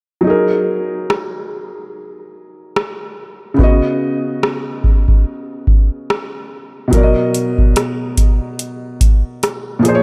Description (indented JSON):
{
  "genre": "contemporary R&B",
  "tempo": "72 BPM",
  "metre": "4/4",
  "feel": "swing 58% on 16ths",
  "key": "unclear",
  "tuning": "A4 = 441 Hz",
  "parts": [
    { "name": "felt-muted upright piano", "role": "accompaniment", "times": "0.2-10.0 s", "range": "A#2 to D#5", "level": "-20 LUFS", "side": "equal", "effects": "none" },
    { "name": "booming analog drum machine", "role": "drums", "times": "1.1-10.0 s", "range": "hi-hat, kick drum, rim click", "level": "-17 LUFS", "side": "equal", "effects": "none" }
  ],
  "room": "moderate plate reverb, RT60 3.1 s",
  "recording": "dreamy mix soaked in reverb",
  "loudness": "-16 LUFS",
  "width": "mono",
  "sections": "0.3-10.0 A section",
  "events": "none",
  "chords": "0.3 F#69; 3.6 C#9sus4; 6.9 Bmaj7",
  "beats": "| 0.26 1.09 1.92 2.76 | 3.59 4.42 5.26 6.09 | 6.92 7.76 8.59 9.42"
}